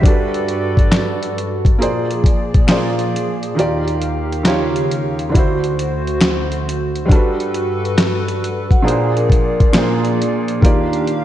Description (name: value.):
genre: lo-fi hip hop.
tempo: 68 BPM.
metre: 4/4.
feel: swing 65% on 16ths.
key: unclear.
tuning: A4 = 439 Hz.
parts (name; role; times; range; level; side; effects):
silver concert flute; melody; 0.0-1.8 s; D5; -28 LUFS; right 4 dB; analog delay.
felt-muted upright piano; accompaniment; 0.0-11.2 s; Bb2 to D5; -19 LUFS; right 2 dB; cassette tape.
hollow soft pad; sustained chords; 0.0-11.2 s; D2 to F5; -21 LUFS; equal; chorus.
lo-fi sampler-style drum kit; drums; 0.0-11.2 s; handclaps, hi-hat, kick drum, snare drum; -15 LUFS; equal; overdrive.
finger snap; percussion; 0.9-10.0 s; none; -32 LUFS; left 5 dB; none.
vibraphone with soft mallets; second line; 8.7-9.7 s; Bb4 to F#5; -23 LUFS; equal; analog delay.
room: moderate plate reverb, RT60 1.8 s, studio reverb.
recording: dreamy mix soaked in reverb, nothing above 10.5 kHz.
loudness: -14 LUFS.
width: side -12 dB against mid.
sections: 0.0-11.2 A section.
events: kick muted 3.6-5.3.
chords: 0.0 Gmaj9; 1.8 Bb7; 3.6 Ebmaj9; 4.4 Eb9; 5.3 D7; 7.1 Gmaj9; 8.9 Bb7; 10.6 Ebmaj9.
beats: | 0.04 0.92 1.80 2.68 | 3.57 4.45 5.33 6.21 | 7.09 7.98 8.86 9.74 | 10.62.